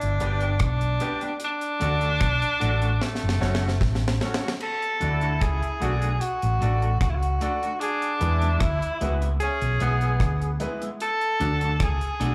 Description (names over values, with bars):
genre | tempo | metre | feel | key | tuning
roots reggae | 75 BPM | 4/4 | straight | D lydian from 4.6 s | A4 = 440 Hz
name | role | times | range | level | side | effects
warm tenor saxophone | melody | 0.0-12.3 s | A3 to A4 | -30 LUFS | equal | dub echo, slapback echo
hollow-body short-scale fingered electric bass | bass | 0.0-12.3 s | F#1 to E2 | -26 LUFS | equal | none
deep reggae drum kit | drums | 0.0-12.3 s | crash cymbal, hi-hat, kick drum, rim click, snare drum | -30 LUFS | equal | none
electric guitar at the edge of break-up | accompaniment | 0.2-12.3 s | G#3 to G4 | -38 LUFS | equal | dub echo, slapback echo
bright concert grand piano | stabs | 0.2-12.3 s | D4 to D5 | -38 LUFS | equal | slapback echo
brilliant trombone | second line | 5.0-10.6 s | E4 to G#4 | -34 LUFS | equal | dub echo, slapback echo
room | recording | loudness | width
small room ambience | live gig heard through the venue's PA, club reverb | -24 LUFS | mono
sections
0.0-4.6 A section; 4.6-12.3 B section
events
drum fill 3.0-4.6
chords
0.0 G; 1.4 D; 3.0 F#m; 4.6 D; 7.8 E; 11.0 D